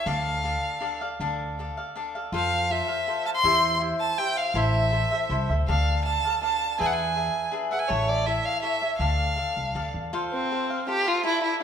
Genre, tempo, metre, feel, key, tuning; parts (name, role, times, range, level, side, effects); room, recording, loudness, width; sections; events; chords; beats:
mexican folk, mariachi; 162 BPM; 3/4; rubato; D minor; A4 = 441 Hz
rich violin; melody; 0.0-11.6 s; C4 to C6; -25 LUFS; equal
cavaquinho; accompaniment; 0.0-11.6 s; D4 to F5; -29 LUFS; left 1 dB
upright bass; bass; 0.1-10.1 s; A1 to F2; -28 LUFS; equal
moderate scoring stage reverb, RT60 1.6 s; minimal, uncompressed stereo recording; -23 LUFS; side -8 dB against mid
0.0-1.2 A section; 1.2-10.1 A section; 10.1-11.6 B section
0.1 Dm; 2.3 F; 3.4 C/E; 4.5 Am; 5.7 Dm; 6.8 E7; 7.9 A; 9.0 Dm; 10.1 F
| 0.06 0.43 0.81 | 1.20 1.58 1.95 | 2.33 2.70 3.06 | 3.43 3.79 4.17 | 4.54 4.91 5.29 | 5.67 6.04 6.42 | 6.79 7.16 7.53 | 7.90 8.26 8.63 | 9.00 9.37 9.75 | 10.13 10.50 10.88 | 11.24 11.61